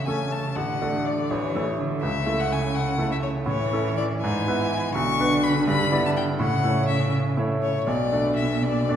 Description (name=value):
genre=quick classical-period movement for piano trio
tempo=82 BPM (dotted quarters)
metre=6/8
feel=rubato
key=A major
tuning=A4 = 441 Hz
part: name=clear violin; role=melody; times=0.0-9.0 s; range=C#5 to C#6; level=-27 LUFS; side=left 5 dB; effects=none
part: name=rich cello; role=second line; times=0.0-9.0 s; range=B2 to E3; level=-26 LUFS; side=right 2 dB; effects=none
part: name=bright baby grand piano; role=accompaniment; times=0.0-9.0 s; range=A1 to D5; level=-25 LUFS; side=equal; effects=none
room=wet recital hall reverb, RT60 1.6 s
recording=heard from further back in the room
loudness=-21 LUFS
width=side -9 dB against mid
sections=0.0-9.0 A section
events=none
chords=0.0 A; 0.6 D/A; 1.3 A; 2.0 A/C#; 3.5 A; 4.2 E/G#; 5.0 Bm; 5.7 Em7/G; 6.4 A; 7.9 Bm7